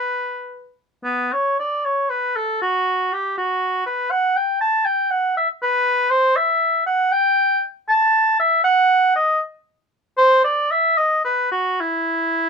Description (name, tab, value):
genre	classical, baroque-style fantasia for unaccompanied oboe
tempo	63-82 BPM (dotted quarters)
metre	6/8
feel	rubato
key	B minor, E minor from 7.1 s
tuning	A4 = 440 Hz
part	warm oboe	solo	0.0-12.5 s	B3 to A5	-16 LUFS	equal	none
room	light reverb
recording	dark, warm production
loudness	-16 LUFS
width	side -5 dB against mid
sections	0.0-1.0 A section; 1.0-12.5 B section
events	none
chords	none